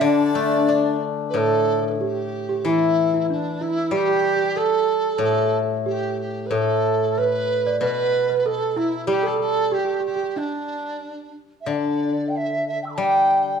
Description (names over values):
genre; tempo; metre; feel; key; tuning
chinese traditional, Chinese chamber ensemble; 93 BPM; 2/4; rubato; D zhi mode; A4 = 439 Hz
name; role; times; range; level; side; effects
mellow large dizi; melody; 0.0-13.6 s; D4 to E6; -23 LUFS; right 4 dB; none
breathy bright low xiao; second line; 0.0-1.0 s; D4; -22 LUFS; left 7 dB; none
celesta; second line; 0.0-11.3 s; D4 to D5; -25 LUFS; right 4 dB; none
steel-string zither; accompaniment; 0.0-13.6 s; A2 to D4; -24 LUFS; left 6 dB; none
room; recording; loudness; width
moderate recital hall reverb, RT60 1.4 s; minimal, uncompressed stereo recording; -19 LUFS; side -6 dB against mid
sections
0.0-1.4 A section; 1.4-11.7 B section; 11.7-13.6 C section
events
none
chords
none